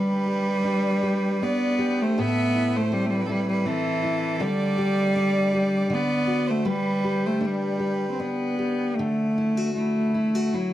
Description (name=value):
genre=celtic folk, Celtic slow air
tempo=79 BPM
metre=3/4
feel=rubato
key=G major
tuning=A4 = 440 Hz
part: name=clear cello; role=melody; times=0.0-10.7 s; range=E3 to C4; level=-23 LUFS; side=equal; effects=slapback echo
part: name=clear fiddle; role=second line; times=0.0-8.6 s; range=A4 to E5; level=-30 LUFS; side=right 7 dB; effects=none
part: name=fingerpicked steel-string acoustic guitar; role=accompaniment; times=0.0-10.7 s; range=A2 to B4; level=-28 LUFS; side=left 3 dB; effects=none
room=light reverb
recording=dry, close 1970s-style studio recording, lossy compression artefacts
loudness=-22 LUFS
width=side -13 dB against mid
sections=0.0-9.0 A section; 9.0-10.7 B section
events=none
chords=0.0 G; 2.2 Am; 4.4 Dsus4; 5.9 D; 6.7 G; 9.0 Dadd9